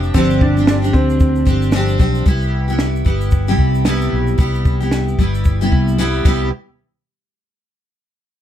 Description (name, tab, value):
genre	acoustic pop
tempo	113 BPM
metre	4/4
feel	swing 60% on 16ths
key	C major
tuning	A4 = 440 Hz
part	dark upright piano	melody	0.0-1.7 s	C4 to D4	-19 LUFS	right 2 dB	ping-pong delay
part	picked steel-string acoustic guitar	accompaniment	0.0-6.5 s	G2 to G4	-18 LUFS	left 1 dB	double-tracked left and right
part	fretless electric bass	bass	0.0-6.5 s	F1 to D2	-18 LUFS	equal	none
part	compact cocktail drum kit	drums	0.0-6.4 s	crash cymbal, kick drum, shaker, snare drum	-16 LUFS	equal	none
room	little or no reverb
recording	none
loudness	-13 LUFS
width	side -11 dB against mid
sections	0.0-2.3 A section; 2.3-6.5 B section; 6.5-8.4 C section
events	drum fill 6.0-6.5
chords	0.0 G7sus4; 2.3 Cmaj7; 6.5 N.C.